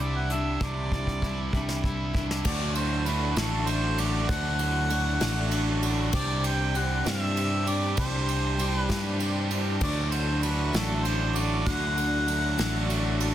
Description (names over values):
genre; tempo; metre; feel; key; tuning
folk rock and heartland rock; 65 BPM (dotted quarters); 6/8; straight; D mixolydian; A4 = 441 Hz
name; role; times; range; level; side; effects
mellow harmonica; melody; 0.0-13.2 s; A4 to G5; -32 LUFS; equal; none
picked steel-string acoustic guitar; accompaniment; 0.0-13.3 s; C3 to G4; -34 LUFS; left 3 dB; none
crunchy overdriven guitar; riff; 0.0-13.3 s; C3 to G4; -32 LUFS; right 1 dB; none
picked electric bass; bass; 0.0-13.3 s; A1 to G2; -28 LUFS; equal; none
soft brush drum kit; drums; 0.3-13.3 s; crash cymbal, hi-hat, kick drum, ride cymbal, snare drum; -31 LUFS; right 1 dB; soft clipping on kick
musette accordion; sustained chords; 2.4-13.3 s; D4 to D5; -39 LUFS; right 2 dB; none
room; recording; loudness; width
light reverb, small room ambience; dense, heavily limited modern master; -24 LUFS; side -11 dB against mid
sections
0.0-2.5 A section; 2.5-13.3 B section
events
drum fill 0.6-2.5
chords
0.0 Cadd9; 2.5 D; 6.1 Csus2; 9.8 D